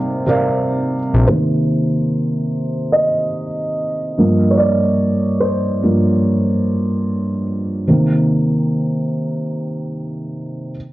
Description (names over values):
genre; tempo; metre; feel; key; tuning
lo-fi hip hop; 73 BPM; 4/4; swing 56% on 16ths; C minor; A4 = 440 Hz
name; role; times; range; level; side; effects
felt-muted upright piano; accompaniment; 0.0-10.8 s; G2 to F5; -16 LUFS; equal; cassette tape, low-pass filter
dark analog pad; sustained chords; 0.0-1.3 s; C3 to Eb4; -29 LUFS; right 1 dB; chorus
fat analog bass; bass; 1.1-1.3 s; Bb1; -11 LUFS; left 1 dB; none
room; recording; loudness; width
moderate studio reverb, RT60 0.5 s; worn, warbling old tape, cassette tape, warbly pitch drift; -15 LUFS; side -17 dB against mid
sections
0.0-1.3 A section; 1.3-10.9 B section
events
felt piano solo 1.3-10.9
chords
0.0 Cm7; 4.2 Gm7; 7.9 Cm7